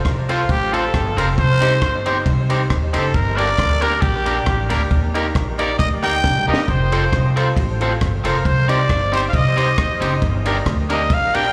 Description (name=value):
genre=ska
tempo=136 BPM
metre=4/4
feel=swing 54% on 8ths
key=F mixolydian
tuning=A4 = 439 Hz
part: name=upright bass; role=bass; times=0.0-11.5 s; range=F1 to E2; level=-23 LUFS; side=equal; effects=none
part: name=compact cocktail drum kit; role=drums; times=0.1-11.4 s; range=kick drum, ride cymbal, rim click, snare drum, toms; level=-25 LUFS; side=equal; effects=none
part: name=growling trumpet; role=melody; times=0.3-11.5 s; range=F4 to G5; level=-24 LUFS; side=equal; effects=dub echo
part: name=electric guitar at the edge of break-up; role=accompaniment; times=0.3-11.5 s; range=Bb3 to C5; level=-26 LUFS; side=equal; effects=slapback echo
part: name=clear upright piano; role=stabs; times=0.3-11.5 s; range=D4 to C5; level=-29 LUFS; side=equal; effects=dub echo
room=light reverb, small room ambience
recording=live gig heard through the venue's PA, club reverb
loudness=-18 LUFS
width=mono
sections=0.0-11.5 A section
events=trumpet solo 0.0-11.5; drum fill 6.2-6.7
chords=0.0 F; 1.4 Cm; 3.1 Gm; 4.9 Eb; 6.7 F; 8.5 Cm; 10.2 Gm